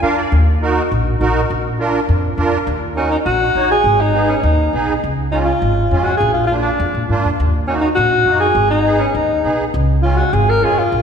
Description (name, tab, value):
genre	latin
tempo	204 BPM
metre	4/4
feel	straight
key	Eb minor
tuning	A4 = 435 Hz
part	musette accordion	accompaniment	0.0-10.8 s	Ab3 to F5	-19 LUFS	right 2 dB	none
part	upright bass	bass	0.0-11.0 s	Ab1 to Bb2	-18 LUFS	equal	none
part	warm alto saxophone	melody	3.0-11.0 s	Db4 to Bb4	-16 LUFS	left 1 dB	none
room	wet concert hall reverb, RT60 2.0 s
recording	recorded in a church or concert hall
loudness	-13 LUFS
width	side -7 dB against mid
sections	0.0-2.7 A section; 2.7-11.0 B section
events	accordion fill 0.0-0.3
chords	0.3 Ebm; 1.5 Bb; 2.7 Ebm; 3.8 Abm; 5.0 Db; 6.2 Bb; 7.4 Ebm; 8.6 Abm; 9.7 Db